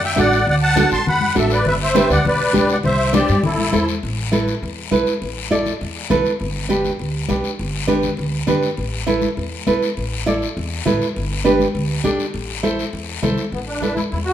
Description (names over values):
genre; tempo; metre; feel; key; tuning
latin, cumbia; 202 BPM; 4/4; straight; A dorian; A4 = 441 Hz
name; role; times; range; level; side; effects
musette accordion; melody; 0.0-3.9, 13.5-14.3 s; B3 to C6; -18 LUFS; equal; none
upright bass; bass; 0.0-14.3 s; G1 to G2; -24 LUFS; equal; none
nylon-string guitar; accompaniment; 0.2-14.0 s; D4 to D5; -20 LUFS; right 3 dB; none
congas; percussion; 0.2-14.1 s; none; -25 LUFS; left 3 dB; none
guiro; percussion; 0.2-14.3 s; none; -28 LUFS; left 8 dB; none
room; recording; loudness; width
moderate large studio reverb, RT60 1.4 s; minimal, uncompressed stereo recording; -16 LUFS; side -10 dB against mid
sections
0.0-4.0 A section; 4.0-13.5 B section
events
none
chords
0.0 D; 1.7 G; 2.8 Csus2; 3.4 Am; 4.0 Asus2; 6.4 G; 8.8 Asus2; 11.2 G; 12.3 Am; 13.5 Asus2